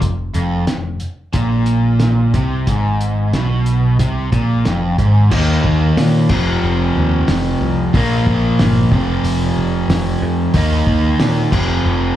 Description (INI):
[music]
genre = classic rock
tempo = 91 BPM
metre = 4/4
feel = straight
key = unclear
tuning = A4 = 439 Hz
[part]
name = crunchy overdriven guitar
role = riff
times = 0.0-12.2 s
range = F2 to Eb4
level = -16 LUFS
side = equal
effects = slapback echo
[part]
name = picked electric bass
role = bass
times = 0.0-12.1 s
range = F1 to Bb2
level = -18 LUFS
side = equal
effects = none
[part]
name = cloth-damped thuddy drum kit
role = drums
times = 0.0-11.7 s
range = crash cymbal, hi-hat, kick drum, snare drum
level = -20 LUFS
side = equal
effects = none
[sound]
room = light reverb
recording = live gig heard through the venue's PA, club reverb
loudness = -13 LUFS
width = side -12 dB against mid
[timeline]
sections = 0.0-5.3 A section; 5.3-12.2 B section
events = none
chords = 0.0 F5; 5.3 Eb5; 6.3 F5; 7.9 Bb5; 8.9 F5; 10.6 Eb5; 11.5 F5